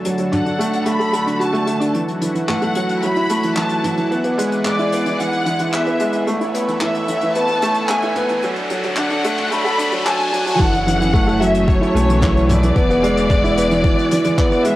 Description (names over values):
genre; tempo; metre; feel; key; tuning
piano and strings electronica; 111 BPM; 4/4; straight; F# minor; A4 = 440 Hz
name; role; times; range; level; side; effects
lush unison pad; sustained chords; 0.0-14.8 s; D3 to A5; -26 LUFS; equal; chorus, cassette tape, plate reverb
warm sub bass; bass; 0.0-13.9 s; E1 to D2; -22 LUFS; equal; sidechain pumping, high-pass filter
soft brush drum kit; drums; 0.0-14.8 s; handclaps, hi-hat, toms; -28 LUFS; left 1 dB; none
clear upright piano; riff; 0.1-14.8 s; E3 to A4; -18 LUFS; right 1 dB; cassette tape
clear symphonic violin section; melody; 0.3-14.8 s; C#5 to B5; -21 LUFS; left 1 dB; cassette tape
riser; sound effects; 4.6-10.6 s; none; -28 LUFS; left 1 dB; none
electronic kick drum; drums; 10.6-14.5 s; none; -17 LUFS; equal; none
room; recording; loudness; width
wet booth ambience, RT60 0.2 s; home recording on cassette, high-pass filter; -15 LUFS; side -16 dB against mid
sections
0.0-10.6 A section; 10.6-14.8 B section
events
build-up 0.0-10.6; filter sweep 0.0-10.6; riser 4.6-10.6; drop 10.6-14.8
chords
0.0 D; 1.9 F#m7; 4.1 E7; 6.3 Aadd9; 8.4 D; 10.6 F#m7; 12.8 E7